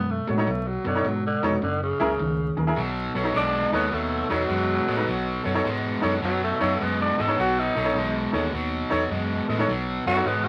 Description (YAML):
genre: electric blues shuffle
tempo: 104 BPM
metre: 4/4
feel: swing 67% on 8ths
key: B mixolydian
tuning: A4 = 445 Hz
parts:
  - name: growling tenor saxophone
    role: second line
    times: 0.0-10.5 s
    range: B2 to A4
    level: -28 LUFS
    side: equal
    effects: none
  - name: crunchy overdriven guitar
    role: riff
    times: 0.0-10.5 s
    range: F#2 to G#3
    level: -29 LUFS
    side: equal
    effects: none
  - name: vintage muted fingered electric bass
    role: bass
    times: 0.0-10.5 s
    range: E#1 to A2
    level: -33 LUFS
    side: equal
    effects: none
  - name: bright upright piano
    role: accompaniment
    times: 0.3-10.3 s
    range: D#4 to D#5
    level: -29 LUFS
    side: equal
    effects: none
room: moderate studio reverb, RT60 0.5 s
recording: vinyl crackle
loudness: -25 LUFS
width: mono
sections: 0.0-2.8 A section; 2.8-10.5 B section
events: tenor saxophone solo 2.8-10.5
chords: 0.0 B9; 1.6 F#9; 2.8 B9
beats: | 0.47 1.05 1.62 2.20 | 2.78 3.35 3.93 4.50 | 5.08 5.65 6.23 6.81 | 7.38 7.96 8.53 9.11 | 9.69 10.26